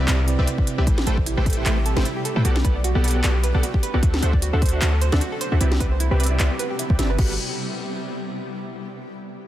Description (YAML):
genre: future bass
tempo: 152 BPM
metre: 4/4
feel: swing 55% on 16ths, half-time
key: G major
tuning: A4 = 439 Hz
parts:
  - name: mellow tine electric piano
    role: accompaniment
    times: 0.0-0.9 s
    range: C3 to D5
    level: -29 LUFS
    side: right 2 dB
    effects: fast stereo tremolo, sidechain pumping, digital delay
  - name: shimmering ambient pad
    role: sustained chords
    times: 0.0-7.4 s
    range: C3 to G4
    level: -31 LUFS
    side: equal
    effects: chorus, built-in reverb, sidechain pumping
  - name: dense compressed supersaw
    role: riff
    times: 0.0-7.3 s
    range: G3 to A5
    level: -28 LUFS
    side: equal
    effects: sidechain pumping, low-pass filter, digital delay
  - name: warm 808-style bass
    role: bass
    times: 0.0-7.4 s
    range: G1 to A2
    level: -20 LUFS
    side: equal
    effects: sidechain pumping
  - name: trap drum kit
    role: drums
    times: 0.1-7.3 s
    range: crash cymbal, handclaps, hi-hat, snare drum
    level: -28 LUFS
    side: equal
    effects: overdrive
  - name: electronic kick drum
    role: drums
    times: 0.6-7.3 s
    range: none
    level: -21 LUFS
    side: equal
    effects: none
  - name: soft round pluck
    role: arpeggios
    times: 0.9-7.4 s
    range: E4 to E5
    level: -30 LUFS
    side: right 5 dB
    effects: chorus, sidechain pumping, digital delay
room: little or no reverb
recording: dense, heavily limited modern master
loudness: -19 LUFS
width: side -13 dB against mid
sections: 0.0-7.2 A section; 7.2-8.8 B section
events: none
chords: 0.0 Cmaj7; 0.9 Am7; 2.4 Gmaj7/B; 4.0 D7; 5.6 Cmaj7; 7.2 Gmaj9